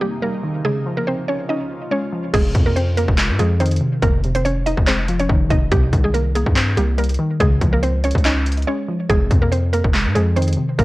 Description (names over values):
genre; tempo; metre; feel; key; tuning
hip hop, trap; 142 BPM; 4/4; half-time; F minor; A4 = 440 Hz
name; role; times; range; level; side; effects
mallet-like synth pluck; melody; 0.0-10.8 s; G3 to Eb5; -22 LUFS; right 1 dB; chorus, low-pass filter, tape echo
warbly dusty pluck; accompaniment; 0.0-10.8 s; F2 to Db4; -23 LUFS; equal; chorus, low-pass filter
granular cloud pad; sustained chords; 0.0-2.3 s; C3 to F4; -33 LUFS; equal; built-in reverb
long sustained 808-style bass; bass; 2.3-10.8 s; F1 to Ab2; -19 LUFS; equal; none
trap drum kit; drums; 2.3-10.8 s; crash cymbal, handclaps, hi-hat, kick drum; -19 LUFS; equal; overdrive
room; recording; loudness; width
little or no reverb; worn, warbling old tape, cassette tape, warbly pitch drift; -16 LUFS; side -19 dB against mid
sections
0.0-2.3 A section; 2.3-10.8 B section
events
break 8.7-9.1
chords
0.0 Cm7; 0.6 Dbmaj7; 2.3 Fm7; 5.7 Cm7; 7.4 Dbmaj7; 9.1 Fm7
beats
0.22 | 0.65 1.07 1.49 1.91 | 2.34 2.76 3.18 3.60 | 4.03 4.45 4.87 5.29 | 5.72 6.14 6.56 6.98 | 7.41 7.83 8.25 8.67 | 9.10 9.52 9.94 10.36 | 10.79